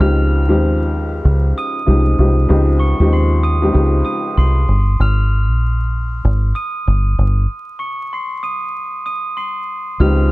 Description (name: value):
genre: hip hop, boom-bap hip-hop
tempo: 96 BPM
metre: 4/4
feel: swing 60% on 16ths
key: Ab major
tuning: A4 = 437 Hz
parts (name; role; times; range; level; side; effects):
- glockenspiel with soft plastic mallets; melody; 0.0-10.3 s; C6 to F7; -24 LUFS; right 1 dB; high-pass filter, low-pass filter
- dark upright piano; accompaniment; 0.0-4.6, 10.0-10.3 s; Db2 to G4; -18 LUFS; left 1 dB; high-pass filter, low-pass filter
- deep dub fingered electric bass; bass; 0.0-10.3 s; G1 to Eb2; -13 LUFS; equal; none
room: studio ambience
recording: dark, warm production, vinyl crackle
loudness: -14 LUFS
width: side -20 dB against mid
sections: 0.0-10.3 A section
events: break 5.0-10.0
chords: 0.0 Dbmaj9#11; 5.0 Abmaj7